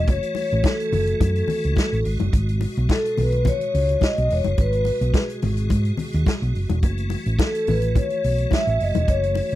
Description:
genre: disco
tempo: 107 BPM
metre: 4/4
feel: straight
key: F# minor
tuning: A4 = 439 Hz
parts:
  - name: tonewheel organ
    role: sustained chords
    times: 0.0-9.6 s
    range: B2 to F#4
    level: -31 LUFS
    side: right 2 dB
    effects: overdrive, chorus vibrato, slow rotary speaker
  - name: hollow-body short-scale fingered electric bass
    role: bass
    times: 0.0-9.6 s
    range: E1 to G#2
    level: -22 LUFS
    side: equal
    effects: none
  - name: vibraphone with soft mallets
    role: melody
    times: 0.1-9.6 s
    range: G#4 to E5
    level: -24 LUFS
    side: left 1 dB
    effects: none
  - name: vintage drum kit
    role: drums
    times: 0.1-9.6 s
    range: hi-hat, kick drum, snare drum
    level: -22 LUFS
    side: equal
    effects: none
  - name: congas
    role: percussion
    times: 0.1-9.5 s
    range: none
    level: -29 LUFS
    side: left 7 dB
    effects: none
room: little or no reverb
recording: dry, close 1970s-style studio recording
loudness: -19 LUFS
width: side -14 dB against mid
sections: 0.0-9.6 A section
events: none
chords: 0.0 F#m7; 2.0 G#m7; 6.8 F#m7

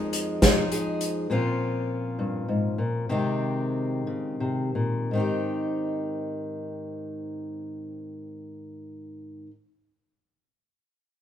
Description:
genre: indie folk with a building arrangement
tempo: 55-69 BPM (dotted quarters)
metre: 6/8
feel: straight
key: Ab major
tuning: A4 = 440 Hz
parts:
  - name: fingerpicked steel-string acoustic guitar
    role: accompaniment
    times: 0.0-9.5 s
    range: F2 to Ab4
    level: -27 LUFS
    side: left 1 dB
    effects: none
  - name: unplugged drum kit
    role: drums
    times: 0.1-1.1 s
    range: hi-hat, kick drum, snare drum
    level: -21 LUFS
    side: equal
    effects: none
room: moderate large studio reverb, RT60 1.1 s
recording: band playing live in one room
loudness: -25 LUFS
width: side -10 dB against mid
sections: 0.0-5.1 A section; 5.1-9.5 B section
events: slowing down 1.3-5.1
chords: 0.0 Fm7; 1.3 Bbmadd9; 3.1 Abmaj7/C; 5.1 Abmaj7

